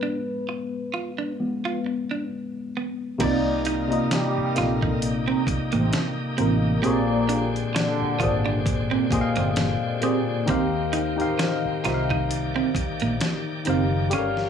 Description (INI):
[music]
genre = R&B, neo-soul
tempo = 66 BPM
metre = 4/4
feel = swing 55% on 16ths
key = C minor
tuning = A4 = 440 Hz
[part]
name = clean electric guitar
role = second line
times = 0.0-14.3 s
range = Bb3 to F4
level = -28 LUFS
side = right 10 dB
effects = plate reverb
[part]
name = tine electric piano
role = accompaniment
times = 0.0-14.5 s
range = Bb2 to F5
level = -25 LUFS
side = left 3 dB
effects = phaser, plate reverb
[part]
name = bright tonewheel organ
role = sustained chords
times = 3.2-14.5 s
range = D3 to G5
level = -34 LUFS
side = right 1 dB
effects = fast rotary speaker, overdrive, plate reverb
[part]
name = mellow trombone section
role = stabs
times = 3.2-9.5 s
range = Bb2 to G4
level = -30 LUFS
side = right 2 dB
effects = plate reverb
[part]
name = vintage muted fingered electric bass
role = bass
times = 3.2-14.5 s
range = F#1 to Eb2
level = -27 LUFS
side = right 1 dB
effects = none
[part]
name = dusty soul sampler-style drum kit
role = drums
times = 3.2-14.5 s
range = crash cymbal, hi-hat, kick drum, snare drum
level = -28 LUFS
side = equal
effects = none
[sound]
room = moderate studio reverb, RT60 0.5 s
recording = small room reverb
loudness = -22 LUFS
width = side -7 dB against mid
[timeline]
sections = 0.0-3.2 A section; 3.2-14.5 B section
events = break 0.0-3.2; tine electric piano solo 0.0-3.2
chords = 0.0 Fdim; 3.2 Cm11; 6.8 Bb13; 10.5 Eb6